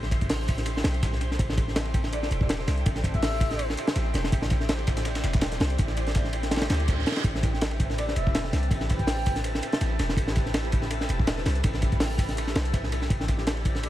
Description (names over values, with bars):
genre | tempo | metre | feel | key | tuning
drum and bass, jungle | 164 BPM | 4/4 | swing 54% on 16ths | A minor | A4 = 442 Hz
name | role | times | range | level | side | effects
soft string machine | sustained chords | 0.0-13.9 s | C4 to D5 | -35 LUFS | equal | phaser, ensemble chorus
warm 808-style bass | bass | 0.0-13.9 s | E1 to D2 | -28 LUFS | equal | none
crunchy breakbeat drum kit | drums | 0.0-13.9 s | hi-hat, kick drum, ride cymbal, snare drum | -26 LUFS | equal | tape echo
dusty soul sampler-style drum kit | drums | 0.0-13.9 s | hi-hat, snare drum | -41 LUFS | equal | high-pass filter on hats, high-pass filter on snare
drifting glass-harmonics texture | texture | 0.0-13.9 s | A4 to C6 | -40 LUFS | equal | chorus, built-in reverb
breathy flute-like synth lead | melody | 2.1-3.6, 8.0-9.4, 13.8-13.9 s | D5 to G5 | -36 LUFS | left 1 dB | wide subtle chorus, dub echo
reverse cymbal | sound effects | 6.8-7.2 s | none | -36 LUFS | right 7 dB | none
room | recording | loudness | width
small room ambience | echo-heavy mix, vinyl crackle | -24 LUFS | side -14 dB against mid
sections
0.0-13.9 A section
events
reverse cymbal 6.8-7.2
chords
0.0 Am7